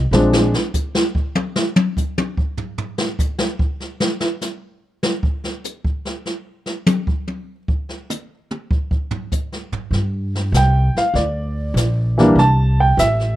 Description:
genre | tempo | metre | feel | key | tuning
jazz piano trio | 98 BPM | 4/4 | swing 69% on 8ths | unclear | A4 = 440 Hz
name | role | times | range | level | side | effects
upright bass | bass | 0.0-0.5, 9.7-13.4 s | A1 to G2 | -17 LUFS | equal | none
warm baby grand piano | melody | 0.1-0.5, 10.6-13.4 s | E3 to A5 | -16 LUFS | equal | none
jazz brush drum kit | drums | 0.1-13.4 s | brushed snare drum, hi-hat, kick drum, snare drum, toms | -20 LUFS | equal | none
room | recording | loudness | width
small room ambience | none | -17 LUFS | side -14 dB against mid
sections
0.0-13.4 A section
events
grand piano solo 0.0-13.4; drum solo 0.1-9.9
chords
0.1 N.C.; 9.9 Gm; 12.4 C

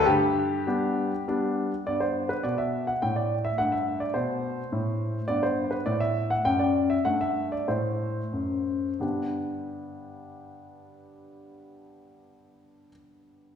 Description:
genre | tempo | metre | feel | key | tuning
classical-period piano sonatina | 86-106 BPM | 3/4 | rubato | G major | A4 = 440 Hz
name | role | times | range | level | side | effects
clear grand piano | solo | 0.0-13.6 s | F#2 to G5 | -25 LUFS | left 1 dB | none
room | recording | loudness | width
wet recital hall reverb, RT60 1.5 s | heard from further back in the room | -25 LUFS | side -8 dB against mid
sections
0.0-1.9 A section; 1.9-9.0 B section; 9.0-13.1 C section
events
slowing down 4.4-9.0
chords
0.1 G; 1.9 Am9/G; 5.3 G; 7.1 F#m7b5; 9.0 G

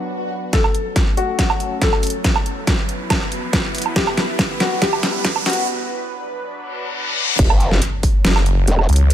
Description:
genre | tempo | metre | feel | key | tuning
heavy wobble dubstep | 140 BPM | 4/4 | half-time | F# phrygian | A4 = 441 Hz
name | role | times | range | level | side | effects
lush unison pad | sustained chords | 0.0-9.1 s | C#3 to C#5 | -29 LUFS | right 1 dB | chorus, sidechain pumping
swell, riser, reverse cymbal and impact | sound effects | 0.0-9.1 s | none | -26 LUFS | equal | none
felt-muted upright piano | melody | 0.5-5.7 s | F#4 to A4 | -23 LUFS | left 4 dB | digital delay
dubstep drum kit | drums | 0.5-9.1 s | crash cymbal, hi-hat, snare drum, woodblock | -20 LUFS | right 2 dB | overdrive, low-pass filter on snare, low-pass filter on hats, low-pass filter on perc, low-pass filter on cymbals, low-pass filter on room
electronic kick drum | drums | 0.5-8.1 s | none | -19 LUFS | equal | overdrive
growl bass | bass | 7.4-8.9 s | E1 to F#1 | -16 LUFS | equal | chorus, overdrive
snarling distorted saw bass | bass | 8.2-9.1 s | F#1 to C#2 | -13 LUFS | equal | distortion, overdrive
room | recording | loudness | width
light reverb, digital ambience | high-pass filter | -16 LUFS | side -11 dB against mid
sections
0.5-7.4 A section; 7.4-9.1 B section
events
swell 0.0-0.5; build-up 0.5-7.4; drum fill 0.5-5.7; riser 0.5-5.7; filter sweep 0.5-7.4; break 5.7-7.4; reverse cymbal 6.7-7.4; drop 7.4-9.1; impact 7.4-9.1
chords
0.0 Bm/F#; 0.5 F#m; 2.2 Bsus4/F#; 4.0 Em; 5.7 Bm/F#; 7.4 F#5

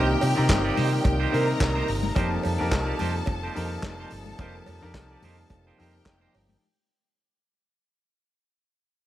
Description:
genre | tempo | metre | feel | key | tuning
disco | 108 BPM | 4/4 | swing 56% on 16ths | unclear | A4 = 440 Hz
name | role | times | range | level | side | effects
clear studio string section | second line | 0.0-6.6 s | G4 to Bb5 | -31 LUFS | equal | none
bright grand piano | accompaniment | 0.0-6.6 s | C3 to Bb4 | -31 LUFS | left 3 dB | none
clean electric guitar | accompaniment | 0.0-6.5 s | Bb3 to D5 | -33 LUFS | right 6 dB | none
overdriven tonewheel organ | sustained chords | 0.0-6.6 s | C3 to Eb4 | -32 LUFS | right 1 dB | chorus vibrato, slow rotary speaker
hollow-body short-scale fingered electric bass | bass | 0.0-6.5 s | F1 to C3 | -28 LUFS | equal | none
warm soul drum kit | drums | 0.2-6.5 s | handclaps, hi-hat, kick drum, snare drum | -27 LUFS | equal | none
cowbell | percussion | 0.2-6.5 s | none | -38 LUFS | right 7 dB | none
congas | percussion | 0.5-6.6 s | none | -37 LUFS | left 5 dB | none
room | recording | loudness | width
small room ambience | none | -22 LUFS | side -13 dB against mid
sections
0.0-6.6 A section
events
fade-out 0.0-6.6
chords
0.0 Cm7; 2.2 F9sus4

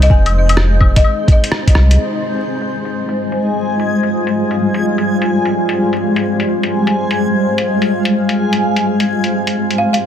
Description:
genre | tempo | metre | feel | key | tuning
future garage | 127 BPM | 4/4 | swing 66% on 16ths | F minor | A4 = 440 Hz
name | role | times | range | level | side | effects
folk marimba with hard mallets | melody | 0.0-1.4, 9.8-10.0 s | Eb5 to Ab5 | -22 LUFS | left 2 dB | digital delay
granular cloud pad | sustained chords | 0.0-10.1 s | F2 to F5 | -15 LUFS | left 1 dB | built-in reverb, vintage 12-bit sampler grit, sidechain pumping
warm sub bass | bass | 0.0-2.0 s | F1 to C2 | -11 LUFS | equal | tube saturation, sidechain pumping
lo-fi sampler-style drum kit | drums | 0.0-10.0 s | claves, hi-hat, rim click | -22 LUFS | left 2 dB | low-pass filter on perc, small room ambience, low-pass filter on hats, soft clipping on snare, low-pass filter on snare
backwards swelling texture | texture | 0.0-10.1 s | Ab5 to G6 | -23 LUFS | left 1 dB | built-in reverb
electronic kick drum | drums | 0.1-1.7 s | none | -10 LUFS | equal | small room ambience
room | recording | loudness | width
light reverb, digital ambience | dense, heavily limited modern master, vinyl crackle | -12 LUFS | side -9 dB against mid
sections
0.0-2.0 A section; 2.0-10.1 B section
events
band accent 1.5; filter sweep on drum 2.0-10.1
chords
0.0 Fm9

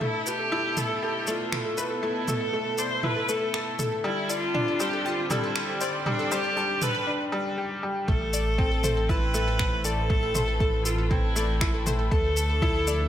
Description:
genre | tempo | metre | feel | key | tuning
piano and strings electronica | 119 BPM | 4/4 | straight | A minor | A4 = 441 Hz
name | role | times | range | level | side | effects
clear viola | melody | 0.0-13.1 s | D4 to C5 | -29 LUFS | equal | low-pass filter
dark studio string section | sustained chords | 0.0-13.1 s | B2 to E5 | -36 LUFS | equal | sidechain pumping
bright upright piano | riff | 0.0-13.1 s | G3 to C5 | -30 LUFS | left 2 dB | digital delay
deep house drum kit | drums | 0.0-13.0 s | finger snaps, shaker, toms | -32 LUFS | right 1 dB | studio ambience
analog pluck | arpeggios | 0.1-13.0 s | A4 to A5 | -36 LUFS | left 1 dB | chorus, sidechain pumping, digital delay
dark detuned saw bass | bass | 8.1-13.1 s | A1 to D2 | -28 LUFS | right 1 dB | sidechain pumping
electronic kick drum | drums | 8.1-12.7 s | none | -26 LUFS | equal | studio ambience
room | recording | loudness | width
moderate recital hall reverb, RT60 1.3 s | none | -24 LUFS | side -11 dB against mid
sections
0.0-8.1 A section; 8.1-13.1 B section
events
build-up 0.0-8.1; break 7.1-8.1; drop 8.1-13.1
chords
0.0 Esus4; 4.0 Csus2; 8.1 Amadd9; 12.1 Dmadd9

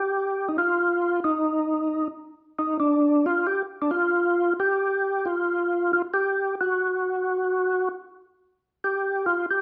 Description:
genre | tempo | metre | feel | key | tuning
jazz | 90 BPM | 4/4 | swing 68% on 8ths | unclear | A4 = 439 Hz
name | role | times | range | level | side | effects
percussive tonewheel organ | solo | 0.0-9.6 s | D4 to G4 | -24 LUFS | equal | slow rotary speaker, overdrive, chorus vibrato
room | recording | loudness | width
moderate large studio reverb, RT60 0.9 s | none | -24 LUFS | mono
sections
0.0-8.1 A section; 8.1-9.6 B section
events
tonewheel organ solo 8.1-9.6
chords
none

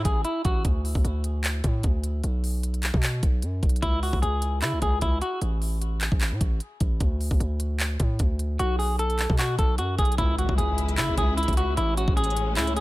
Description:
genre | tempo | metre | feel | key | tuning
hip hop, trap | 151 BPM | 4/4 | half-time | C# minor | A4 = 441 Hz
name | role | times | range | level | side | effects
semi-hollow electric guitar | melody | 0.0-0.6, 3.8-5.4, 8.6-12.8 s | E4 to A4 | -28 LUFS | equal | ping-pong delay
distorted 808-style bass | bass | 0.0-12.8 s | A1 to C#3 | -26 LUFS | equal | distortion
trap drum kit | drums | 0.0-12.8 s | handclaps, hi-hat, kick drum | -25 LUFS | equal | none
warm studio string section | sustained chords | 10.2-12.8 s | A2 to E4 | -32 LUFS | left 2 dB | none
impact | sound effects | 10.2-11.8 s | none | -35 LUFS | equal | none
room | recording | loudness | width
digital ambience | none | -22 LUFS | side -18 dB against mid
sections
0.0-10.2 A section; 10.2-12.8 B section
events
impact 10.2-11.8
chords
0.0 F#m9/A; 0.6 D5; 2.2 B5; 3.8 C#5; 5.4 N.C.; 7.0 D5; 8.6 B5; 10.2 C#m; 11.8 Amaj7

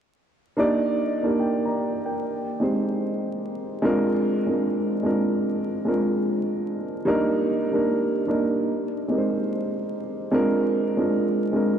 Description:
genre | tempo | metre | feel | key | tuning
hip hop | 74 BPM | 4/4 | swing 62% on 16ths | Eb major | A4 = 441 Hz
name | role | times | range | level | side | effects
dark upright piano | accompaniment | 0.6-11.8 s | G3 to Bb5 | -22 LUFS | right 1 dB | low-pass filter
room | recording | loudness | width
wet cathedral reverb, RT60 6.6 s | dreamy mix soaked in reverb, vinyl crackle | -22 LUFS | side -8 dB against mid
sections
0.6-11.8 A section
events
none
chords
0.6 Ebmaj7; 2.2 Abmaj7; 3.8 Bb9; 7.1 Ebmaj7; 8.7 Abmaj7; 10.3 Bb9

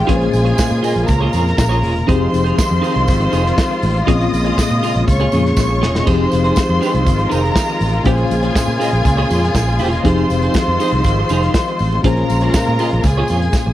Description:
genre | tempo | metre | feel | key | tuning
disco | 120 BPM | 4/4 | straight | unclear | A4 = 437 Hz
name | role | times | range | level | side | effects
warm studio violin section | second line | 0.0-13.7 s | Ab4 to Eb6 | -21 LUFS | equal | none
tine electric piano | accompaniment | 0.0-13.7 s | Bb2 to C5 | -20 LUFS | left 4 dB | overdrive, fast stereo tremolo
dark studio string section | sustained chords | 0.0-13.7 s | Db3 to F4 | -22 LUFS | left 1 dB | none
clean electric guitar | accompaniment | 0.1-13.7 s | Eb4 to Eb5 | -24 LUFS | right 5 dB | tremolo
fingered electric bass | bass | 0.1-13.7 s | E1 to Bb2 | -18 LUFS | equal | none
warm soul drum kit | drums | 0.1-13.7 s | crash cymbal, hi-hat, kick drum, snare drum | -18 LUFS | equal | none
tambourine | percussion | 0.3-13.7 s | none | -34 LUFS | right 14 dB | none
room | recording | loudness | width
little or no reverb | dry, close 1970s-style studio recording | -13 LUFS | side -13 dB against mid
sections
0.0-13.7 A section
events
drum fill 5.6-6.1, 13.5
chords
0.1 Bbm7; 2.1 Fm7; 4.1 Bbm7; 6.1 Fm7; 8.1 Bbm7; 10.0 Fm7; 12.0 Bbm7

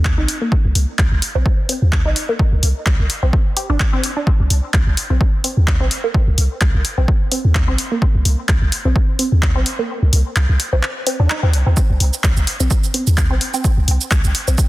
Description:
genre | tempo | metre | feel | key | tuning
minimal techno | 128 BPM | 4/4 | swing 56% on 16ths | C minor | A4 = 440 Hz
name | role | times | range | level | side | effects
punchy sub bass | bass | 0.0-14.6 s | G1 to Eb2 | -15 LUFS | equal | sidechain pumping
electronic kick drum | drums | 0.1-14.7 s | none | -16 LUFS | equal | overdrive
punchy analog drum machine | drums | 0.1-14.7 s | handclaps, hi-hat, shaker | -22 LUFS | equal | overdrive
resonant blip pluck | riff | 0.2-14.5 s | Bb3 to G4 | -24 LUFS | equal | phaser, sidechain pumping, dub echo
room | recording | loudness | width
light reverb | dense, heavily limited modern master | -14 LUFS | side -18 dB against mid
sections
0.0-14.7 A section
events
kick drops out 9.9-11.8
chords
0.0 Cm

